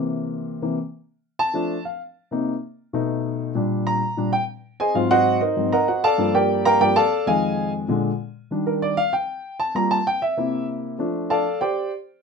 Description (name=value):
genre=jazz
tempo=194 BPM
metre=4/4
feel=straight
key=unclear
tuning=A4 = 440 Hz
part: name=warm baby grand piano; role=solo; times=0.0-11.9 s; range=F2 to Bb5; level=-20 LUFS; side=equal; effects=none
room=moderate studio ambience, RT60 0.5 s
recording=minimal, uncompressed stereo recording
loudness=-20 LUFS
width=side -5 dB against mid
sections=0.0-8.5 A section; 8.5-12.2 A section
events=grand piano solo 0.0-12.2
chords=0.0 C7; 1.1 F6; 2.3 Cm7; 2.9 B7; 3.6 Bb6; 4.8 Ab9; 6.0 Gm9; 7.3 Fm7; 7.9 Bb7; 8.5 Ebmaj7; 9.8 Gm7; 10.4 C7; 11.0 F69